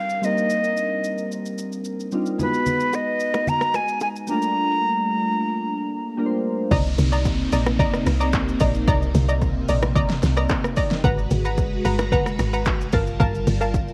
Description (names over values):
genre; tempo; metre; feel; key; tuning
amapiano; 111 BPM; 4/4; straight; unclear; A4 = 438 Hz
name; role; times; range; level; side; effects
breathy bright jazz flute; melody; 0.0-6.1 s; Cb5 to Bb5; -25 LUFS; equal; cassette tape, analog delay
glassy digital keys; accompaniment; 0.0-6.8 s; G3 to C5; -27 LUFS; equal; chorus, cassette tape
downlifter; sound effects; 0.0-2.4, 6.7-11.0 s; none; -43 LUFS; equal; none
deep house drum kit; drums; 0.1-13.9 s; handclaps, hi-hat, kick drum, rim click, shaker, snare drum; -27 LUFS; equal; overdrive
congas and bongos; percussion; 2.4-13.9 s; none; -30 LUFS; equal; none
string machine, violins; sustained chords; 6.7-13.9 s; C3 to Bb5; -30 LUFS; equal; phaser, ensemble chorus, cassette tape
analog pluck; stabs; 6.7-13.9 s; Bb4 to Bb5; -29 LUFS; equal; chorus, cassette tape, analog delay
woody log drum bass; bass; 6.7-13.9 s; G1 to C2; -25 LUFS; equal; none
room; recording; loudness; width
light reverb; home recording on cassette; -22 LUFS; mono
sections
0.0-6.7 A section; 6.7-13.9 B section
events
drop 6.7-13.9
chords
0.0 Cm9; 2.4 Abm7; 4.3 Gm9; 6.7 Cm9; 11.0 Abm9; 12.9 Gm9